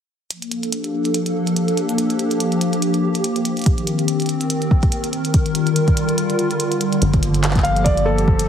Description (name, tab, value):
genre	IDM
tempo	143 BPM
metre	4/4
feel	swing 56% on 16ths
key	unclear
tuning	A4 = 441 Hz
part	hollow soft pad	sustained chords	0.3-8.5 s	D3 to Bb4	-19 LUFS	left 1 dB	ensemble chorus
part	glitchy drum kit	drums	0.3-8.5 s	handclaps, hi-hat	-26 LUFS	right 1 dB	studio reverb
part	electronic kick drum	drums	3.7-8.4 s	none	-17 LUFS	equal	studio reverb
part	rubbery square bass	bass	7.0-8.5 s	G1	-20 LUFS	equal	none
part	felt-muted upright piano	melody	7.6-8.5 s	A4 to F5	-19 LUFS	equal	ping-pong delay
room	moderate plate reverb, RT60 1.7 s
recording	heavily compressed radio sound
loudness	-16 LUFS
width	side -8 dB against mid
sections	0.3-7.0 A section; 7.0-8.5 B section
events	filter sweep on analog synth pad 0.3-7.0; break 6.2-7.0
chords	0.3 Gm9; 3.7 Cm7; 5.3 Ebmaj9; 7.0 Gm9